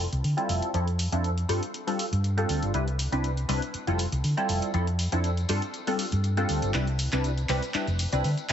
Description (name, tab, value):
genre	filtered disco house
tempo	120 BPM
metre	4/4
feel	swing 53% on 16ths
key	C major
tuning	A4 = 440 Hz
part	funky polysynth comp	accompaniment	0.0-8.5 s	F3 to B4	-29 LUFS	equal	chorus, phaser, low-pass filter
part	hollow-body short-scale fingered electric bass	bass	0.0-8.5 s	F1 to D3	-26 LUFS	equal	low-pass filter
part	tambourine	percussion	0.0-8.5 s	none	-46 LUFS	left 7 dB	none
part	punchy analog drum machine	drums	0.1-8.5 s	handclaps, hi-hat, shaker	-34 LUFS	equal	none
room	light reverb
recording	heavily compressed radio sound, nothing above 8.0 kHz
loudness	-25 LUFS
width	side -9 dB against mid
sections	0.0-8.5 A section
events	build-up 0.0-8.5; filter sweep 0.0-8.5; drum fill 6.7-8.5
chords	0.0 Fmaj7; 0.7 Dm9/F; 1.5 G9sus4; 2.7 Cmaj9; 3.7 Fmaj7; 4.7 Dm9/F; 5.5 G9sus4; 6.7 Cmaj9; 7.7 Dm9/F